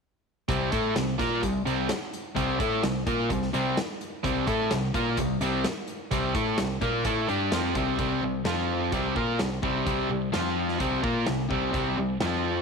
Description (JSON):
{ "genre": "classic rock", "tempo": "128 BPM", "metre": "4/4", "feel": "straight", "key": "C mixolydian", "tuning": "A4 = 440 Hz", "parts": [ { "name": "distorted electric guitar", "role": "riff", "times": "0.5-12.6 s", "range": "C3 to Bb4", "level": "-29 LUFS", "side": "right 12 dB", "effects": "overdrive" }, { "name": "overdriven semi-hollow guitar", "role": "riff", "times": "0.5-12.6 s", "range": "C3 to Bb4", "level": "-29 LUFS", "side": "left 11 dB", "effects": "none" }, { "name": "hollow-body short-scale picked electric bass", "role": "bass", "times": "0.5-12.6 s", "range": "C2 to Bb2", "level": "-34 LUFS", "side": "right 1 dB", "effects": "none" }, { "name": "big rock drum kit", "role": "drums", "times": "0.5-12.3 s", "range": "hi-hat, kick drum, snare drum", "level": "-33 LUFS", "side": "equal", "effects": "none" } ], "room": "moderate echo chamber reverb, RT60 1.3 s, studio ambience", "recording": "1960s-style stereo with parts hard left and right", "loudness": "-24 LUFS", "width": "side -5 dB against mid", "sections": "0.5-8.0 A section; 8.0-12.6 B section", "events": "none", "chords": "0.5 C; 8.0 C5; 8.5 F5; 8.9 C5; 10.3 F5; 10.8 C5" }